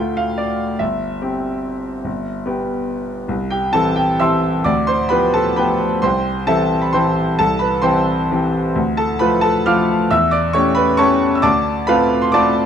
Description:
classical, piano waltz; 126-152 BPM; 3/4; rubato; C major; A4 = 440 Hz
bright grand piano; solo; 0.0-12.7 s; G1 to F6; -15 LUFS; equal
light reverb; close, detailed microphones; -15 LUFS; side -8 dB against mid
0.0-3.3 A section; 3.3-12.7 B section
0.0 Dm; 0.8 C/G; 2.1 G; 3.3 C; 4.7 G7/D; 6.0 C; 8.8 Dm; 10.1 A7/E; 11.4 Dm7
0.39 | 0.81 1.22 1.63 | 2.05 2.46 2.88 | 3.30 3.75 4.22 | 4.67 5.12 5.58 | 6.04 6.48 6.94 | 7.39 7.84 8.32 | 8.77 9.21 9.66 | 10.11 10.54 10.99 | 11.44 11.88 12.33

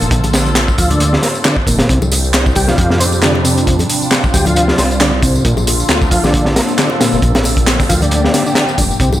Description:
breakbeat, breaks; 135 BPM; 4/4; swing 56% on 16ths; A4 = 440 Hz
phased analog pad; sustained chords; 0.0-9.2 s; C3 to A4; -19 LUFS; left 1 dB; phaser, chorus, sidechain pumping
tonewheel organ; riff; 0.0-9.1 s; Bb2 to C4; -17 LUFS; equal; chorus vibrato, tape echo
dark detuned saw bass; bass; 0.0-9.2 s; F1 to F2; -17 LUFS; equal
crunchy breakbeat drum kit; drums; 0.0-9.1 s; hi-hat, kick drum, snare drum; -15 LUFS; equal
garage drum kit; drums; 0.0-9.2 s; handclaps, hi-hat, tambourine; -19 LUFS; equal
congas and bongos; percussion; 0.0-9.2 s; -25 LUFS; left 4 dB
little or no reverb; -10 LUFS; side -13 dB against mid
0.0-9.2 A section
0.0 Bbmaj7; 1.9 Csus2; 5.4 Bbmaj7
| 0.12 0.56 1.00 1.45 | 1.89 2.34 2.78 3.23 | 3.67 4.12 4.56 5.00 | 5.45 5.89 6.34 6.78 | 7.23 7.67 8.12 8.56 | 9.00

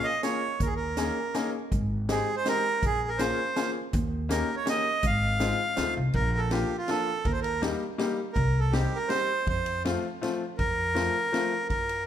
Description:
musette waltz; 162 BPM; 3/4; straight; Ab major; A4 = 440 Hz
accordion; melody; 0.0-12.0 s; F4 to F5; -28 LUFS; right 2 dB
bright upright piano; accompaniment; 0.0-11.5 s; F3 to Ab4; -32 LUFS; left 4 dB
street-band drum kit; drums; 0.2-12.0 s; hi-hat, kick drum, ride cymbal, snare drum; -33 LUFS; equal
upright bass; bass; 0.6-12.1 s; Ab1 to Gb2; -30 LUFS; equal
moderate recital hall reverb, RT60 1.5 s; -25 LUFS; side -10 dB against mid
0.0-6.2 A section; 6.2-12.1 B section
0.0 Bbm7; 0.6 Eb7sus4; 1.7 Abmaj7; 2.8 Bbm7; 3.9 Eb7; 5.0 Ab6; 5.8 F7; 6.2 Bb; 7.3 Eb; 8.4 Cm; 9.5 F
0.24 | 0.61 0.98 1.35 | 1.72 2.09 2.46 | 2.83 3.20 3.57 | 3.93 4.30 4.67 | 5.04 5.40 5.78 | 6.15 6.52 6.89 | 7.26 7.63 7.99 | 8.36 8.73 9.10 | 9.47 9.85 10.22 | 10.59 10.96 11.33 | 11.70 12.07

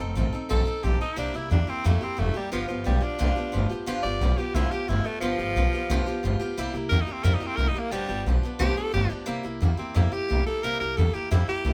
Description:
rockabilly; 178 BPM; 4/4; straight; C mixolydian; A4 = 441 Hz
picked swing-style acoustic guitar; accompaniment; 0.0-11.7 s; G2 to A4; -34 LUFS; equal
upright bass; bass; 0.0-11.7 s; F1 to F2; -28 LUFS; equal
raspy tenor saxophone; melody; 0.5-11.7 s; F3 to D5; -31 LUFS; equal
light reverb; band playing live in one room; -26 LUFS; mono
0.0-9.3 A section; 9.3-11.7 B section
tenor saxophone solo 0.0-9.3
0.0 F7; 1.2 C7; 2.5 G7; 6.6 C7; 7.9 G7; 9.3 C7
0.16 0.50 0.84 | 1.18 1.51 1.85 2.19 | 2.53 2.86 3.20 3.54 | 3.88 4.21 4.55 4.89 | 5.23 5.56 5.90 6.24 | 6.58 6.91 7.25 7.59 | 7.93 8.27 8.60 8.94 | 9.28 9.62 9.96 10.29 | 10.63 10.97 11.31 11.65

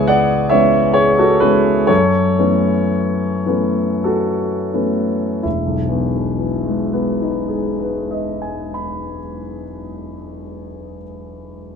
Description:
classical, impressionist solo piano; 42-72 BPM; 3/4; rubato; E major; A4 = 444 Hz
warm concert grand piano; solo; 0.0-11.8 s; E1 to B5; -16 LUFS; left 1 dB
wet large studio reverb, RT60 1.3 s; minimal, uncompressed stereo recording; -15 LUFS; side -6 dB against mid
0.0-5.4 A section; 5.4-9.6 B section
slowing down 0.0-5.4
0.0 C#m7; 1.9 F#m7; 5.4 Emaj7
0.09 0.96 | 1.89 2.91 4.07 | 5.44 6.79 8.17

